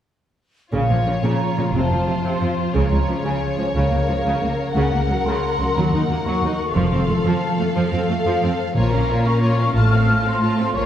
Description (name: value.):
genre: cinematic.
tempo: 120 BPM (dotted quarters).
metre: 12/8.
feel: straight.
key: Bb harmonic minor.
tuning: A4 = 440 Hz.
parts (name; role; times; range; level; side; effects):
warm symphonic violin section; melody; 0.7-10.9 s; C5 to A5; -29 LUFS; left 2 dB; none.
mellow hollow large flute ensemble; second line; 0.7-10.9 s; F5 to F6; -25 LUFS; left 1 dB; none.
warm symphonic violin section; second line; 0.7-10.9 s; F4 to Bb4; -28 LUFS; left 3 dB; none.
rich symphonic viola section; accompaniment; 0.7-10.9 s; C3 to Eb4; -25 LUFS; right 2 dB; none.
concert harp; arpeggios; 0.7-10.9 s; F2 to F5; -25 LUFS; left 2 dB; none.
rich symphonic cello section; bass; 0.7-10.9 s; Db2 to Bb2; -24 LUFS; right 1 dB; none.
rich symphonic double bass section; bass; 0.7-10.9 s; F1 to Eb2; -24 LUFS; right 1 dB; none.
timpani; percussion; 6.8-9.2 s; F2 to Bb2; -27 LUFS; equal; none.
room: wet scoring stage reverb, RT60 1.5 s.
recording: heard from further back in the room.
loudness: -17 LUFS.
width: side -10 dB against mid.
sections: 0.7-10.9 A section.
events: none.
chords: 0.7 Bbm; 1.7 F; 2.7 Db; 3.8 Bbm/Db; 4.8 Gb/Db; 5.8 Ebm; 6.8 F; 8.8 Bbm; 9.8 F/A.